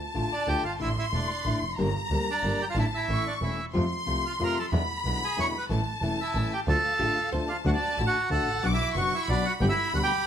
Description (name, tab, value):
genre	tango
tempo	184 BPM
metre	3/4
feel	rubato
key	D minor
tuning	A4 = 440 Hz
part	warm studio violin section	second line	0.0-10.3 s	F5 to D6	-32 LUFS	left 2 dB	none
part	nylon-string guitar	accompaniment	0.1-10.1 s	B2 to G4	-31 LUFS	left 3 dB	none
part	clear double bass	bass	0.2-10.1 s	E1 to F2	-30 LUFS	right 1 dB	none
part	bandoneon	melody	0.3-10.3 s	D4 to C#6	-29 LUFS	right 2 dB	none
part	archtop guitar, miked and amplified	second line	7.0-7.5 s	A4 to D5	-38 LUFS	right 3 dB	analog delay
room	light reverb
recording	close, detailed microphones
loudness	-25 LUFS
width	side -9 dB against mid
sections	0.0-7.7 A section; 7.7-10.3 B section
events	none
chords	0.0 Dm; 0.8 Asus4; 1.8 Gm; 2.8 Asus4; 3.1 A; 3.7 F; 4.7 E7; 5.7 A; 6.7 Dm; 7.7 D; 8.6 Bm; 9.6 G